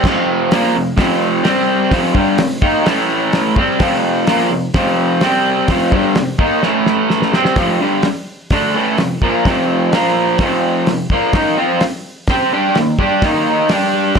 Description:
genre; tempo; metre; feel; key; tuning
garage rock duo or trio; 127 BPM; 4/4; straight; F mixolydian; A4 = 438 Hz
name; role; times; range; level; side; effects
raw garage guitar; riff; 0.0-14.2 s; F2 to C5; -13 LUFS; equal; overdrive
cloth-damped thuddy drum kit; drums; 0.0-14.2 s; crash cymbal, hi-hat, kick drum, snare drum; -18 LUFS; equal; none
room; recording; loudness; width
moderate stone room reverb, RT60 1.1 s, small room ambience; none; -12 LUFS; side -6 dB against mid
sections
0.0-7.6 A section; 7.6-14.2 B section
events
drum fill 6.6-7.6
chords
0.0 F5; 1.4 C5; 1.9 F5; 2.9 A5; 3.6 F5; 5.2 C5; 5.7 F5; 6.6 A5; 7.3 C5; 7.6 F; 9.9 Bb5; 10.4 F5; 11.3 Eb5; 13.7 G5

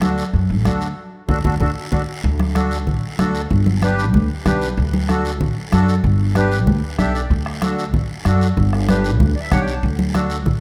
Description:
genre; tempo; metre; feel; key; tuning
latin, cumbia; 190 BPM; 4/4; straight; D major; A4 = 440 Hz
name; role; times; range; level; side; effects
accordion; accompaniment; 0.0-10.4 s; D4 to A5; -27 LUFS; equal; light tremolo tuning
upright bass; bass; 0.0-10.6 s; G1 to F#2; -21 LUFS; equal; none
bombo; percussion; 0.0-10.6 s; none; -27 LUFS; equal; none
congas; percussion; 0.0-10.6 s; none; -24 LUFS; equal; none
guiro; percussion; 0.0-10.6 s; none; -37 LUFS; equal; none
room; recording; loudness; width
light reverb, small room ambience; rough home demo mix; -18 LUFS; mono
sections
0.0-2.2 A section; 2.2-10.6 B section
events
drum fill 1.0-2.2; band accent 1.0-2.2; accordion fill 6.8-7.3, 9.2-9.8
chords
0.0 D; 3.5 G; 4.8 D; 6.0 G; 7.3 D; 8.6 G; 9.8 D

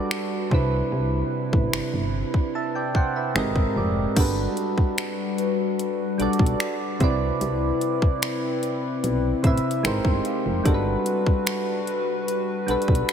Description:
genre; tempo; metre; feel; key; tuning
contemporary R&B; 74 BPM; 4/4; straight; G major; A4 = 440 Hz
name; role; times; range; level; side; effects
soft electric-piano-like synth keys; accompaniment; 0.0-13.1 s; Ab2 to A5; -26 LUFS; right 2 dB; chorus
hollow soft pad; sustained chords; 0.0-13.1 s; C3 to B4; -28 LUFS; left 3 dB; chorus
trap drum kit; drums; 0.1-13.1 s; crash cymbal, finger snaps, hi-hat, kick drum; -25 LUFS; equal; none
solid FM bass; bass; 0.5-13.0 s; F1 to C2; -26 LUFS; equal; none
marimba with soft mallets; texture; 4.2-11.0 s; B4 to A5; -39 LUFS; left 4 dB; none
room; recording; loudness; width
moderate cathedral reverb, RT60 6.3 s; dreamy mix soaked in reverb; -21 LUFS; side -8 dB against mid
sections
0.0-4.2 A section; 4.2-13.1 B section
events
synth keys fill 2.5-4.2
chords
0.0 Gmaj7; 0.5 Cmaj7; 3.4 Abmaj7; 4.2 Gmaj7; 7.0 Cmaj7; 9.8 Abmaj7; 10.7 Gmaj7

